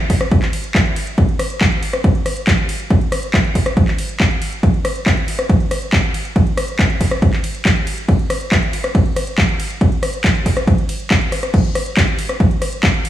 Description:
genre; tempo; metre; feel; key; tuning
trance; 139 BPM; 4/4; straight; none; none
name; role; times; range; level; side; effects
electronic kick drum; drums; 0.1-12.9 s; none; -15 LUFS; equal; overdrive
house drum kit; drums; 0.1-13.1 s; crash cymbal, handclaps, hi-hat, ride cymbal, rim click; -20 LUFS; left 1 dB; overdrive, sidechain pumping on hats, sidechain pumping on cymbals
room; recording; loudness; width
light reverb; small room ambience; -14 LUFS; side -12 dB against mid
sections
0.0-13.1 A section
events
none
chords
none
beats
0.32 0.75 | 1.18 1.61 2.04 2.47 | 2.90 3.34 3.77 4.20 | 4.63 5.06 5.50 5.93 | 6.36 6.79 7.22 7.65 | 8.09 8.52 8.95 9.38 | 9.81 10.24 10.68 11.11 | 11.54 11.97 12.40 12.83

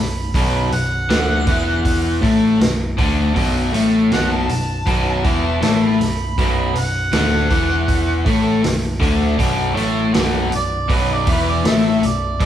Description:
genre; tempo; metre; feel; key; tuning
blues rock power trio and southern rock; 80 BPM; 4/4; straight; B minor; A4 = 440 Hz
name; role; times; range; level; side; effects
mellow harmonica; melody; 0.0-12.5 s; B4 to B5; -24 LUFS; right 2 dB; overdrive
raw garage guitar; riff; 0.0-12.5 s; B1 to A3; -18 LUFS; left 2 dB; overdrive
overdriven picked electric bass; bass; 0.0-12.5 s; B0 to A1; -23 LUFS; right 1 dB; none
vintage drum kit; drums; 0.3-12.5 s; hi-hat, kick drum, snare drum; -21 LUFS; right 1 dB; none
room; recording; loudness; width
moderate large studio reverb, RT60 1.4 s; band playing live in one room; -15 LUFS; side -10 dB against mid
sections
0.0-12.5 A section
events
none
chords
0.0 Bm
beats
0.34 1.10 | 1.85 2.61 3.36 4.12 | 4.87 5.63 6.38 7.14 | 7.89 8.64 9.40 10.15 | 10.90 11.65 12.41

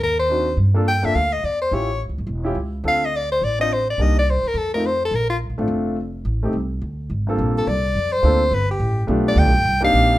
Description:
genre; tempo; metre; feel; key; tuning
jazz, small-group swing and bop; 212 BPM; 4/4; swing 61% on 8ths; unclear; A4 = 439 Hz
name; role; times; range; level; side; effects
bright soprano saxophone; melody; 0.0-5.4, 7.6-10.2 s; F4 to G5; -20 LUFS; left 1 dB; none
upright bass; bass; 0.0-10.2 s; E1 to G2; -21 LUFS; equal; none
warm concert grand piano; accompaniment; 0.3-10.2 s; G2 to C5; -23 LUFS; equal; none
room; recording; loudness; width
moderate club reverb, RT60 0.8 s; minimal, uncompressed stereo recording; -18 LUFS; side -15 dB against mid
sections
0.0-7.4 A section; 7.4-10.2 B section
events
none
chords
0.0 Ab7#11 (rootless); 0.6 Gm9; 1.7 A7b13; 2.9 Dm7; 4.0 Cm7; 4.6 F7; 5.1 Bbmaj9; 6.3 Am7b5; 6.8 Dm7; 7.4 Gm11; 8.5 G7; 9.7 Cm9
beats
0.01 0.29 | 0.58 0.86 1.15 1.43 | 1.71 2.00 2.28 2.57 | 2.85 3.13 3.42 3.70 | 3.98 4.27 4.55 4.84 | 5.12 5.40 5.69 5.97 | 6.25 6.54 6.82 7.10 | 7.39 7.67 7.95 8.24 | 8.52 8.80 9.09 9.37 | 9.65 9.93

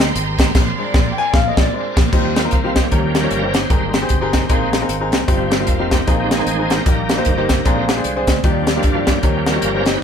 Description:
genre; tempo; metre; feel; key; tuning
uptempo gospel; 152 BPM; 4/4; swing 60% on 8ths; Eb major; A4 = 435 Hz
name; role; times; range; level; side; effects
bright grand piano; accompaniment; 0.0-10.0 s; G2 to Ab5; -21 LUFS; left 3 dB; none
bright tonewheel organ; sustained chords; 0.0-10.0 s; D3 to Eb5; -22 LUFS; right 3 dB; slow rotary speaker, overdrive, chorus vibrato
warm symphonic string section; sustained chords; 0.0-2.1 s; D5 to C6; -26 LUFS; right 4 dB; none
fingered electric bass; bass; 0.0-10.0 s; F1 to G2; -24 LUFS; right 2 dB; none
crisp fusion drum kit; drums; 0.0-9.9 s; crash cymbal, hi-hat, kick drum, snare drum; -16 LUFS; equal; none
room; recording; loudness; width
moderate studio reverb, RT60 0.6 s; band playing live in one room; -14 LUFS; side -8 dB against mid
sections
0.0-2.1 A section; 2.1-10.0 B section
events
grand piano solo 0.0-2.1; band accent 0.6-2.1; tonewheel organ solo 2.1-10.0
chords
0.0 Abmaj9; 0.6 Bb9; 2.1 Eb69; 2.9 Eb7; 3.7 Abmaj9; 4.5 Bb9sus4; 5.3 Eb69/G; 6.1 Bb9sus4; 6.9 Eb/Bb; 7.6 Bb9; 8.4 Ebmaj9; 9.2 Eb7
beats
0.16 | 0.55 0.94 1.34 1.73 | 2.12 2.52 2.91 3.31 | 3.70 4.10 4.49 4.89 | 5.28 5.67 6.07 6.46 | 6.86 7.25 7.65 8.04 | 8.44 8.83 9.23 9.62 | 10.02

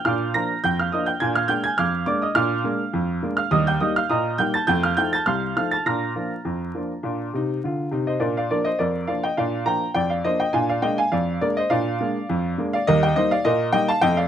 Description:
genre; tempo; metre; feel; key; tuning
ragtime piano; 103 BPM; 2/4; straight; Bb major; A4 = 440 Hz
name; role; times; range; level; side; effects
clear upright piano; solo; 0.0-14.3 s; C2 to Bb6; -20 LUFS; right 1 dB; none
room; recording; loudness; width
light reverb; close, detailed microphones, vinyl crackle; -20 LUFS; side -9 dB against mid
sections
0.0-8.2 A section; 8.2-14.3 A section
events
none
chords
0.0 Bb; 1.2 Bb7; 3.5 Eb; 4.7 F7; 5.9 Bb; 10.5 Bb7; 12.9 Eb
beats
| 0.04 0.62 | 1.20 1.78 | 2.36 2.94 | 3.52 4.10 | 4.68 5.27 | 5.86 6.45 | 7.04 7.62 | 8.21 8.79 | 9.37 9.96 | 10.54 11.12 | 11.70 12.28 | 12.86 13.44 | 14.02

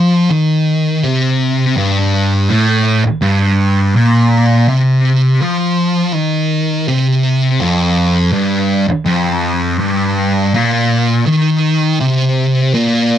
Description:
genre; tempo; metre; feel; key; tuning
rock; 82 BPM; 4/4; straight; G minor; A4 = 440 Hz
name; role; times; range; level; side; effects
thick fuzz guitar; solo; 0.0-13.2 s; F2 to F3; -11 LUFS; equal; distortion, phaser
room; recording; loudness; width
moderate booth ambience, RT60 0.2 s; none; -11 LUFS; side -10 dB against mid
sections
0.0-13.2 A section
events
none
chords
none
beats
0.31 1.04 | 1.77 2.50 3.23 3.96 | 4.69 5.42 6.15 6.88 | 7.61 8.35 9.08 9.81 | 10.54 11.28 12.01 12.75

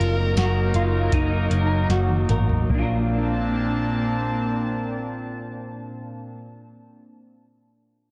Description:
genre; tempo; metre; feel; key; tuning
dream pop; 74-82 BPM; 4/4; straight; Bb major; A4 = 437 Hz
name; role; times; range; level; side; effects
overdriven slide guitar; melody; 0.0-1.9 s; Bb4; -32 LUFS; equal; delay
warbly tape-like pad; sustained chords; 0.0-6.3 s; Bb2 to A5; -30 LUFS; equal; chorus, built-in reverb
semi-hollow electric guitar; arpeggios; 0.0-6.4 s; Bb3 to Bb4; -30 LUFS; equal; ensemble chorus, delay
vintage muted picked electric bass; bass; 0.0-6.3 s; Gb1 to Bb1; -26 LUFS; equal; none
soft vintage rhythm box; drums; 0.0-2.9 s; hi-hat, kick drum, snare drum, tambourine, toms; -27 LUFS; equal; none
room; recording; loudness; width
light reverb, digital ambience; dense, heavily limited modern master; -23 LUFS; mono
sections
0.0-2.7 A section; 2.7-5.9 B section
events
slowing down 0.0-2.7; drum fill 1.9-2.7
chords
0.0 Ebm/Gb; 2.7 Bbmaj7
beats
0.37 1.13 1.90 | 2.70 3.51 4.32 5.13

